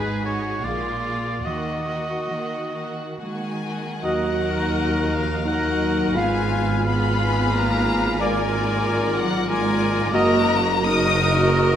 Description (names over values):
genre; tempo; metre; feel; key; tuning
classical, slow romantic movement for symphony orchestra; 62-96 BPM; 3/4; rubato; Eb minor; A4 = 440 Hz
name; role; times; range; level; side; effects
rich chamber violin section; melody; 0.0-11.6 s; F5 to Eb6; -28 LUFS; left 6 dB; none
clear oboe; second line; 0.0-11.8 s; Bb4 to Eb5; -29 LUFS; equal; none
clear symphonic violin section; second line; 0.0-11.8 s; F4 to F5; -29 LUFS; left 2 dB; none
rich studio viola section; accompaniment; 0.0-11.8 s; Bb3 to Ab4; -30 LUFS; right 1 dB; none
clear chamber double bass section; bass; 0.0-11.8 s; Gb1 to Eb2; -27 LUFS; right 2 dB; none
rich studio cello section; bass; 0.0-11.6 s; Ab2 to Eb4; -28 LUFS; right 2 dB; none
hollow concert flute; second line; 4.0-11.8 s; D6 to Gb6; -30 LUFS; left 2 dB; none
warm clarinet; second line; 4.0-11.8 s; Eb4 to Gb4; -28 LUFS; left 2 dB; none
warm French horn section; sustained chords; 4.0-10.4 s; Bb3 to Gb4; -30 LUFS; equal; none
clear trumpet; stabs; 4.0-10.4 s; D5 to F5; -28 LUFS; equal; none
warm tuba; bass; 4.0-11.8 s; Gb1 to Eb2; -28 LUFS; right 3 dB; none
room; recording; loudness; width
wet concert hall reverb, RT60 2.2 s; none; -19 LUFS; side -9 dB against mid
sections
0.0-4.0 A section; 4.0-11.8 B section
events
none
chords
0.0 Abm; 0.6 Bb7; 1.5 Ebm; 6.2 Fdim/Ab; 8.2 Bb7/Ab; 10.1 Ebm/Gb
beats
0.63 | 1.45 2.30 3.21 | 4.04 4.77 5.47 | 6.16 6.87 7.54 | 8.21 8.87 9.50 | 10.14 10.87 11.56